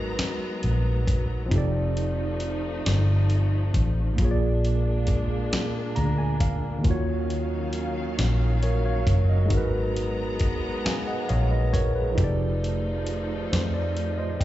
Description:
slow six-eight R&B; 45 BPM (dotted quarters); 6/8; straight; A4 = 440 Hz
tine electric piano; accompaniment; 0.0-14.4 s; Bb2 to Bb5; -29 LUFS; right 2 dB; medium stereo tremolo, slapback echo
warm studio string section; sustained chords; 0.0-14.4 s; Eb3 to Bb5; -33 LUFS; left 2 dB
vintage muted fingered electric bass; bass; 0.0-14.4 s; F1 to F2; -24 LUFS; equal
dusty soul sampler-style drum kit; drums; 0.2-14.4 s; hi-hat, kick drum, snare drum; -26 LUFS; equal
digital ambience; live gig heard through the venue's PA, club reverb, nothing above 7.8 kHz; -22 LUFS; side -14 dB against mid
0.0-14.4 A section
tine electric piano fill 5.5-6.8
0.0 Abm9; 1.5 F13; 4.2 Bb7; 6.8 Ebm9; 9.5 Abm9; 12.2 F13

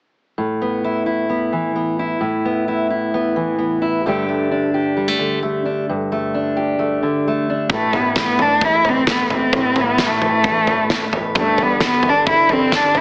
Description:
indie folk with a building arrangement; 131 BPM; 4/4; straight; A4 = 440 Hz
fingerpicked steel-string acoustic guitar; accompaniment; 0.4-13.0 s; E2 to B4; -19 LUFS; equal
warm cello; melody; 7.7-13.0 s; A3 to E4; -15 LUFS; equal
upright bass; bass; 7.7-13.0 s; G1 to A1; -35 LUFS; equal
loose indie drum kit; drums; 7.7-13.0 s; kick drum, snare drum, toms; -20 LUFS; equal
moderate studio reverb, RT60 0.9 s; heavily compressed radio sound, AM radio sound; -15 LUFS; side -29 dB against mid
0.4-7.7 A section; 7.7-13.0 B section
0.4 Asus2; 4.0 Gsus2; 7.7 Asus2; 11.4 Gsus2

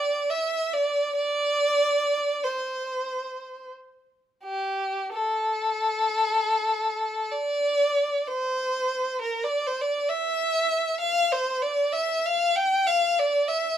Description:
classical, free, expressive piece for unaccompanied violin; 35-69 BPM; 3/4; rubato; A4 = 436 Hz
rich violin; solo; 0.0-13.8 s; G4 to G5; -23 LUFS; equal
light reverb; close, detailed microphones; -23 LUFS; side -10 dB against mid
0.0-5.1 A section; 5.1-13.8 B section

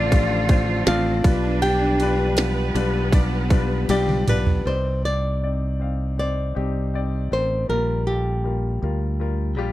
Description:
pop ballad; 80 BPM; 4/4; straight; A4 = 440 Hz
flamenco guitar; melody; 0.0-9.7 s; D4 to G5; -25 LUFS; equal; slapback echo
rich symphonic cello section; second line; 0.0-4.7 s; B3 to F4; -28 LUFS; right 3 dB
warm baby grand piano; accompaniment; 0.0-9.7 s; A2 to F5; -28 LUFS; left 6 dB
rich studio string section; sustained chords; 0.0-4.6 s; D3 to B4; -32 LUFS; right 2 dB
modern bright fingered electric bass; bass; 0.0-9.7 s; A1 to D2; -23 LUFS; equal
minimal click drum kit; drums; 0.1-4.6 s; kick drum, ride cymbal, snare drum, toms; -19 LUFS; right 1 dB; overdrive
little or no reverb; dry, close 1970s-style studio recording; -19 LUFS; side -15 dB against mid
0.0-4.7 A section; 4.7-9.7 B section
drum fill 3.9-4.7
0.0 Dm7/A; 1.2 G7/B; 4.7 Cmadd9; 7.7 Gm7/Bb

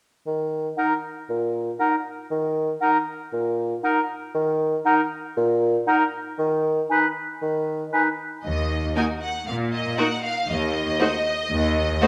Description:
cinematic, playful, whimsical film cue; 118 BPM; 4/4; straight; Eb minor; A4 = 440 Hz
mellow bassoon; accompaniment; 0.3-7.8 s; Bb2 to Eb3; -27 LUFS; equal
bright clarinet; second line; 0.8-8.1 s; Eb4; -28 LUFS; equal
clear oboe; second line; 0.8-8.1 s; Bb4 to Cb5; -28 LUFS; equal
mellow hollow silver concert flute; second line; 0.8-8.0 s; Gb5 to Ab5; -31 LUFS; equal
rich studio violin section; melody; 8.4-12.1 s; Eb5 to Ab5; -28 LUFS; equal
clear studio cello section; bass; 8.4-11.9 s; Eb2 to Bb2; -28 LUFS; equal
rich studio violin section; second line; 9.0-12.1 s; Gb4 to C5; -29 LUFS; equal
rich studio viola section; accompaniment; 9.0-12.1 s; A3 to Eb4; -28 LUFS; equal
wet scoring stage reverb, RT60 1.8 s; -24 LUFS; mono
0.3-8.4 A section; 8.4-12.1 B section
0.3 Eb5; 6.4 N.C.; 8.4 Ebm; 10.5 N.C.

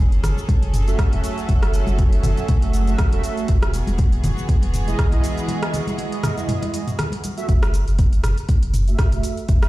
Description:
afro house; 120 BPM; 4/4; swing 56% on 16ths; F# dorian; A4 = 440 Hz
warm studio string section; sustained chords; 0.0-7.4 s; E3 to A4; -30 LUFS; equal; sidechain pumping
warm sub bass; bass; 0.0-9.7 s; E1 to B1; -20 LUFS; equal; sidechain pumping
deep house drum kit; drums; 0.1-9.7 s; cabasa, hi-hat, rim click, toms; -28 LUFS; right 1 dB; small room ambience
congas; percussion; 0.2-7.4 s; -29 LUFS; left 1 dB
electronic kick drum; drums; 0.5-9.6 s; -17 LUFS; equal; small room ambience
mellow synth brass; stabs; 0.9-9.7 s; G#3 to E5; -28 LUFS; right 5 dB; chorus, sidechain pumping, ping-pong delay
digital ambience; played on a big sound system in a bare room, large studio reverb; -17 LUFS; side -17 dB against mid
0.0-7.5 A section; 7.5-9.7 A section
break 5.5-7.5; filter sweep on analog polysynth 7.5-9.7
0.0 F#m7; 3.5 Emaj7; 7.5 F#m7

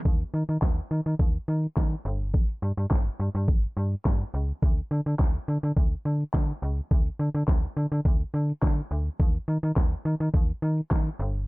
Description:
dance-pop; 105 BPM; 4/4; straight; A4 = 441 Hz
slap-like FM bass; bass; 0.1-11.5 s; G1 to Eb3; -26 LUFS; equal; sidechain pumping
pop drum kit; drums; 0.1-11.5 s; handclaps, hi-hat, kick drum, snare drum; -23 LUFS; equal; overdrive
little or no reverb; low-pass filter; -24 LUFS; side -23 dB against mid
0.1-11.5 A section
filter sweep 0.1-11.5

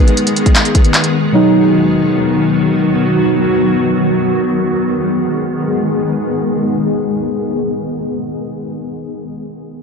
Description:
hip hop, trap; free time; G# minor; A4 = 440 Hz
warbly lo-fi synth keys; accompaniment; 0.0-4.4 s; B2 to B4; -14 LUFS; equal; chorus, low-pass filter
granular cloud pad; sustained chords; 0.0-8.2 s; D#3 to G#4; -15 LUFS; left 1 dB; built-in reverb, low-pass filter
trap drum kit; drums; 0.1-1.1 s; handclaps, hi-hat, kick drum; -10 LUFS; equal
light reverb; blown-out, overdriven recording, overdrive; -12 LUFS; side -5 dB against mid
0.0-4.4 A section; 4.4-7.5 B section
filter sweep 0.0-4.4
0.0 G#m; 1.3 B; 4.4 G#m

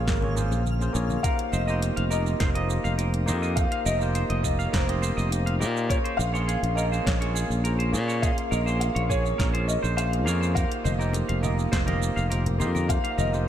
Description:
sunset chillout; 103 BPM; 4/4; straight; A4 = 440 Hz
warm concert grand piano; melody; 0.0-13.5 s; Bb4 to F5; -32 LUFS; left 1 dB; analog chorus, tape echo, shimmer reverb
barky tine electric piano; accompaniment; 0.0-13.5 s; Bb3 to C6; -30 LUFS; moving between left 3 dB and right 4 dB; auto-pan, vintage 12-bit sampler grit, tape echo, shimmer reverb
modern bright fingered electric bass; bass; 0.0-13.5 s; F1 to Bb2; -26 LUFS; equal
twinkling granular texture; texture; 0.0-1.3 s; F5 to F6; -44 LUFS; left 1 dB
deep house drum kit; drums; 0.1-13.4 s; hi-hat, shaker, snare drum; -34 LUFS; right 2 dB
electronic kick drum; drums; 0.1-13.0 s; -27 LUFS; equal
congas and bongos; percussion; 0.2-1.2, 10.8-13.4 s; -36 LUFS; left 2 dB
clean electric guitar; arpeggios; 1.2-13.3 s; Ab4 to F5; -33 LUFS; right 1 dB; lush chorus, tape echo, shimmer reverb
moderate plate reverb, RT60 2.2 s; dreamy mix soaked in reverb; -23 LUFS; side -10 dB against mid
0.0-1.2 A section; 1.2-13.5 B section
0.0 Bbm9; 1.2 F7sus4; 5.9 Bbm9; 10.6 F7sus4

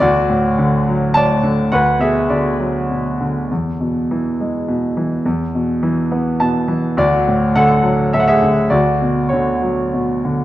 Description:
classical, lyrical solo piano; 103 BPM; 3/4; uneven beats, rubato; A4 = 436 Hz
clear grand piano; solo; 0.0-10.4 s; D2 to A5; -14 LUFS; equal
moderate recital hall reverb, RT60 1.7 s; dark, warm production; -14 LUFS; side -14 dB against mid
0.0-10.4 A section
grand piano fill 6.1-7.0
0.0 D; 1.7 Bm/D; 3.5 E; 5.3 Asus2/E; 7.0 D; 8.7 Bmadd9/D

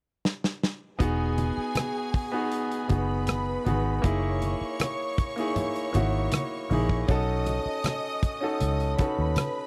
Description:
lush 1970s-style soul; 79 BPM; 4/4; straight; E major; A4 = 440 Hz
modern studio drum kit; drums; 0.3-9.6 s; hi-hat, kick drum, rim click, snare drum; -30 LUFS; equal
rich studio violin section; second line; 1.0-9.7 s; G#4 to D#6; -36 LUFS; equal
clear grand piano; accompaniment; 1.0-9.7 s; A#3 to A4; -32 LUFS; equal
vintage muted fingered electric bass; bass; 1.0-9.3 s; E1 to D#2; -30 LUFS; equal
congas; percussion; 1.4-9.5 s; -35 LUFS; equal
studio reverb; dry, close 1970s-style studio recording; -28 LUFS; mono
0.0-1.0 A section; 1.0-9.7 B section
drum fill 0.2-1.0
0.0 N.C.; 1.0 Emaj9; 4.0 F#13; 7.1 B9

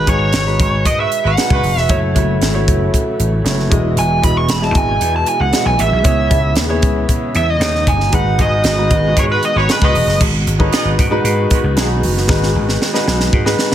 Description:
polished 1980s jazz-funk pop; 115 BPM; 4/4; straight; A4 = 436 Hz
nasal lead guitar with a parked wah; melody; 0.0-10.2 s; B4 to C#6; -18 LUFS; right 2 dB; overdrive, digital delay
warm grand piano; accompaniment; 0.0-13.7 s; G#3 to E5; -20 LUFS; left 1 dB; wide subtle chorus
vintage slap bass; bass; 0.1-13.7 s; E1 to G#2; -17 LUFS; equal
crisp fusion drum kit; drums; 0.1-13.7 s; crash cymbal, hi-hat, kick drum, snare drum; -17 LUFS; equal; gated reverb
clear horn section; second line; 1.0-1.9, 9.3-11.6 s; G#3 to D#5; -23 LUFS; right 2 dB
warm studio string section; sustained chords; 1.9-13.7 s; B2 to F#4; -25 LUFS; right 2 dB
little or no reverb; -12 LUFS; side -11 dB against mid
0.0-10.2 A section; 10.2-13.7 B section
band accent 0.0-1.9, 8.1-10.2; lead electric guitar solo 0.0-10.2; drum fill 12.3-13.7
0.0 G#m7; 1.9 F#m7; 3.7 Emaj9; 6.1 C#m7; 7.6 D#7; 8.1 G#m7

